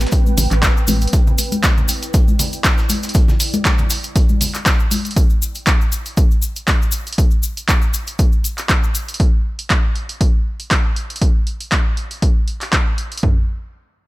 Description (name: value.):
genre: deep house.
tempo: 119 BPM.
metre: 4/4.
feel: swing 55% on 16ths.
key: unclear.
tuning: A4 = 439 Hz.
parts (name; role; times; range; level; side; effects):
organ-like FM bass; bass; 0.0-1.1 s; A1; -16 LUFS; equal; sidechain pumping.
breakbeat sampler-style drum kit; drums; 0.0-5.0 s; hi-hat, snare drum; -30 LUFS; right 1 dB; none.
punchy analog drum machine; drums; 0.0-13.3 s; handclaps, hi-hat; -21 LUFS; equal; none.
cabasa; percussion; 0.0-9.2 s; none; -26 LUFS; left 5 dB; none.
ethereal airy pad; texture; 0.0-5.2 s; C4 to G5; -30 LUFS; right 2 dB; ensemble chorus, built-in reverb, sidechain pumping.
punchy analog drum machine; drums; 0.1-13.4 s; kick drum, toms; -15 LUFS; equal; none.
congas; percussion; 0.3-5.0 s; none; -24 LUFS; left 3 dB; none.
deep mellow chord stab; stabs; 0.9-1.1 s; A3 to B4; -30 LUFS; equal; none.
room: digital ambience.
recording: none.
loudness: -14 LUFS.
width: side -19 dB against mid.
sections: 0.0-13.2 A section.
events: fade-out on ambient pad 0.0-5.2; filter sweep on FM bass 0.0-1.1.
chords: 0.0 Am9; 1.1 Em7; 5.2 N.C..